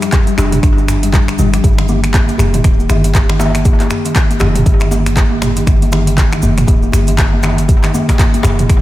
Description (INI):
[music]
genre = afro house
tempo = 119 BPM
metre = 4/4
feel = swing 58% on 16ths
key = unclear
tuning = A4 = 440 Hz
[part]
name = kalimba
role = arpeggios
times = 0.0-8.8 s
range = D3 to D4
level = -17 LUFS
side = left 1 dB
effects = sidechain pumping, tape echo
[part]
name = deep house drum kit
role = drums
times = 0.0-8.8 s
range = finger snaps, handclaps, hi-hat, toms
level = -19 LUFS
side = equal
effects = overdrive
[part]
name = maracas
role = percussion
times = 0.0-8.8 s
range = none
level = -32 LUFS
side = right 2 dB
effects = none
[part]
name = electronic kick drum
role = drums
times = 0.1-8.8 s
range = none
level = -11 LUFS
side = equal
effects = none
[part]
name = djembe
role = percussion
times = 0.1-8.8 s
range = none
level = -20 LUFS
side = left 1 dB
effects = tape echo
[part]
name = warm 808-style bass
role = bass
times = 0.4-8.8 s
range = D1 to G1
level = -16 LUFS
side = equal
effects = sidechain pumping
[sound]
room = light reverb, small room ambience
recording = echo-heavy mix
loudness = -10 LUFS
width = side -15 dB against mid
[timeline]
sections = 0.0-8.8 A section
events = none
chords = 0.0 G5; 1.6 Eb